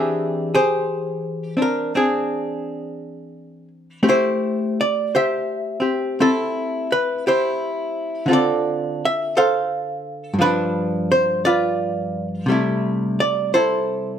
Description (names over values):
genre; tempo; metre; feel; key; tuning
jazz ballad; 57 BPM; 4/4; swing 68% on 8ths; unclear; A4 = 440 Hz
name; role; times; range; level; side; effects
archtop guitar, miked and amplified; solo; 0.0-14.2 s; G2 to F5; -18 LUFS; equal; none
room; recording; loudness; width
light reverb; close, detailed microphones; -18 LUFS; side -8 dB against mid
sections
0.0-14.2 A section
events
none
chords
0.0 E7alt; 4.0 Am7; 8.3 Dm7; 10.4 G7; 12.5 C6